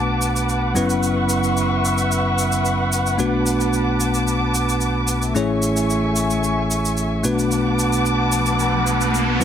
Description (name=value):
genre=nu-disco, nu disco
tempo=111 BPM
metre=4/4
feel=straight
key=B dorian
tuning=A4 = 440 Hz
part: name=bell-like tine electric piano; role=accompaniment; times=0.0-9.4 s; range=F#3 to C#5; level=-22 LUFS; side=moving between left 3 dB and right 3 dB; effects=auto-pan, low-pass filter, ping-pong delay
part: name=muted chamber string section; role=sustained chords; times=0.0-9.4 s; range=A3 to D6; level=-22 LUFS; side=left 1 dB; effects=vintage 12-bit sampler grit, low-pass filter
part: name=picked electric bass with an envelope filter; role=bass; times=0.0-9.4 s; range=F#1 to B1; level=-23 LUFS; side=right 1 dB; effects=none
part: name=cabasa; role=drums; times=0.2-9.4 s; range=none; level=-28 LUFS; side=right 2 dB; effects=none
part: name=riser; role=sound effects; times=8.1-9.4 s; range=none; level=-25 LUFS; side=equal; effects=none
room=light reverb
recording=none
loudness=-17 LUFS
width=side -9 dB against mid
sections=0.0-9.4 A section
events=riser 8.1-9.4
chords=0.0 Bm7; 0.8 F#7sus4; 3.2 Bm7; 5.4 Amaj7; 7.2 Bm7